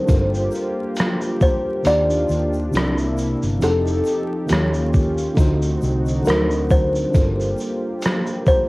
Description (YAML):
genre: lo-fi hip hop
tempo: 68 BPM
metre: 4/4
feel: swing 56% on 16ths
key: G minor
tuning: A4 = 440 Hz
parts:
  - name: kalimba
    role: melody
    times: 0.0-8.7 s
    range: A4 to D5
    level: -22 LUFS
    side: left 1 dB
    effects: low-pass filter
  - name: tine electric piano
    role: accompaniment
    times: 0.0-8.7 s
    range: C3 to Db5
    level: -24 LUFS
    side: equal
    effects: medium stereo tremolo, cassette tape, low-pass filter
  - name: warm analog pad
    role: sustained chords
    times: 0.0-8.7 s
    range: C3 to A4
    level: -26 LUFS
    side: equal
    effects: chorus, low-pass filter, cassette tape
  - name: vintage muted fingered electric bass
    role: bass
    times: 0.1-7.5 s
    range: F1 to Eb2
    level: -22 LUFS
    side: equal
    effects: none
  - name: lo-fi sampler-style drum kit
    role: drums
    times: 0.1-8.7 s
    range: hi-hat, kick drum, rim click, shaker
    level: -21 LUFS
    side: equal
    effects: cassette tape
  - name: egg shaker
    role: percussion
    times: 0.1-8.7 s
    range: none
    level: -48 LUFS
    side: left 5 dB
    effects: none
room: light reverb, digital ambience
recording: home recording on cassette, vinyl crackle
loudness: -17 LUFS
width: side -22 dB against mid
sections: 0.0-8.7 A section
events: none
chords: 0.1 Gm11; 1.8 Ebmaj9; 2.7 C9; 3.6 F9; 4.5 Eb9; 5.4 D7b9; 7.1 Gm11